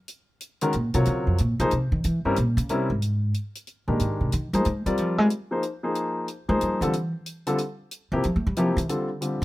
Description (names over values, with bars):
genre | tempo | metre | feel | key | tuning
modal jazz | 184 BPM | 3/4 | swing 64% on 8ths | Eb dorian, F dorian from 3.0 s | A4 = 440 Hz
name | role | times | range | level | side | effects
hi-hat | drums | 0.1-9.3 s | none | -38 LUFS | equal | none
warm grand piano | accompaniment | 0.6-9.4 s | C3 to D5 | -25 LUFS | left 1 dB | none
upright bass | bass | 0.7-9.4 s | F2 to A3 | -24 LUFS | equal | none
room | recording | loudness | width
little or no reverb | close, detailed microphones | -23 LUFS | side -17 dB against mid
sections
0.0-3.0 A section; 3.0-9.4 A section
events
upright bass solo 0.0-9.4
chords
0.0 Ebm9; 2.0 C7b9; 3.0 Fm9; 6.9 G7sus2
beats
| 0.08 0.40 0.73 | 1.06 1.38 1.71 | 2.04 2.36 2.69 | 3.01 3.34 3.67 | 3.99 4.32 4.65 | 4.97 5.30 5.63 | 5.95 6.28 6.60 | 6.93 7.26 7.58 | 7.91 8.23 8.56 | 8.88 9.21